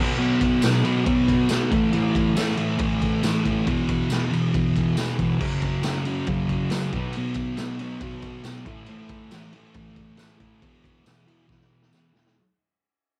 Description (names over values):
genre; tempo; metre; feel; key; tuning
garage rock duo or trio; 138 BPM; 4/4; straight; unclear; A4 = 440 Hz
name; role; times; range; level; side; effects
thick fuzz guitar; riff; 0.0-12.3 s; E2 to B3; -25 LUFS; equal; distortion
raw garage drum kit; drums; 0.4-12.4 s; crash cymbal, kick drum, ride cymbal, snare drum; -30 LUFS; equal; cassette tape
tambourine; percussion; 0.6-12.0 s; none; -40 LUFS; equal; none
room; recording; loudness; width
wet booth ambience, RT60 0.2 s; home recording on cassette; -23 LUFS; mono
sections
0.0-12.4 A section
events
fade-out 0.0-12.4; drum fill 11.5-12.4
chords
0.0 B5; 1.7 A5; 3.7 E5; 5.4 F#5; 6.9 B5; 8.7 A5; 10.6 E5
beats
| 0.21 0.64 1.08 1.51 | 1.95 2.38 2.81 3.25 | 3.68 4.12 4.55 4.98 | 5.42 5.85 6.29 6.72 | 7.15 7.59 8.02 8.45 | 8.89 9.32 9.76 10.19 | 10.62 11.06 11.49 11.93